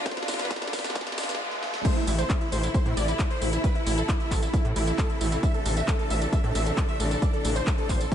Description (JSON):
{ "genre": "uplifting trance", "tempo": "134 BPM", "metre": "4/4", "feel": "straight", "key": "A minor", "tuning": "A4 = 439 Hz", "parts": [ { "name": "dense compressed supersaw", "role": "melody", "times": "0.0-8.1 s", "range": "D4 to E5", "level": "-33 LUFS", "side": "equal", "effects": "sidechain pumping, ping-pong delay" }, { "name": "rich studio string section", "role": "sustained chords", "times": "0.0-8.1 s", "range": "C3 to F4", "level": "-33 LUFS", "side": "left 1 dB", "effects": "sidechain pumping" }, { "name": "riser", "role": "sound effects", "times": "0.0-1.8 s", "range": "none", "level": "-35 LUFS", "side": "right 1 dB", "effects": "none" }, { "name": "electronic kick drum", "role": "drums", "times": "0.1-8.1 s", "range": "none", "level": "-26 LUFS", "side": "equal", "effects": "none" }, { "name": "techno drum kit", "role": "drums", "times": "0.1-8.1 s", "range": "crash cymbal, handclaps, hi-hat, snare drum, tambourine", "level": "-33 LUFS", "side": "equal", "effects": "sidechain pumping on hats, sidechain pumping on perc, sidechain pumping on cymbals" }, { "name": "wide unison pluck", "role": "second line", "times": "1.8-8.1 s", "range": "E4 to E5", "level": "-35 LUFS", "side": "right 1 dB", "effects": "sidechain pumping, ping-pong delay" }, { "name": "gritty driven synth bass", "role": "bass", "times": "2.1-8.1 s", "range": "A1 to A2", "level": "-27 LUFS", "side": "equal", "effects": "sidechain pumping" } ], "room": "light reverb", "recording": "high-pass filter, nothing above 11.0 kHz", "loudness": "-23 LUFS", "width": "side -10 dB against mid", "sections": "0.0-1.8 A section; 1.8-8.1 B section", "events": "build-up 0.0-1.8; drum fill 0.0-1.4, 1.5-1.8; riser 0.0-1.8; drop 1.8-8.1", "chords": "0.0 Dm; 1.8 Am", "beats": "| 0.06 0.51 0.95 1.40 | 1.85 2.30 2.74 3.19 | 3.64 4.09 4.54 4.98 | 5.43 5.88 6.33 6.77 | 7.22 7.67 8.12" }